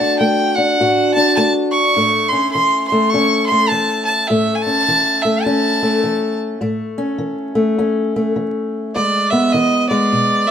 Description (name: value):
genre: acoustic country blues, solo or duo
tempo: 103 BPM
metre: 4/4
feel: swing 62% on 8ths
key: A major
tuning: A4 = 440 Hz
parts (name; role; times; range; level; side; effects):
- bright fiddle; melody; 0.0-10.5 s; D5 to C#6; -16 LUFS; right 1 dB; none
- fingerpicked steel-string acoustic guitar; accompaniment; 0.0-10.5 s; E2 to F#4; -17 LUFS; left 1 dB; none
room: moderate stone room reverb, RT60 1.0 s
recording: band playing live in one room, vinyl crackle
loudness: -14 LUFS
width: side -8 dB against mid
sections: 0.0-10.5 A section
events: none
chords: 0.0 D; 2.0 A; 8.9 E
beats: 0.21 0.80 1.38 | 1.96 2.54 3.12 3.70 | 4.29 4.87 5.45 6.03 | 6.62 7.20 7.78 8.36 | 8.95 9.53 10.11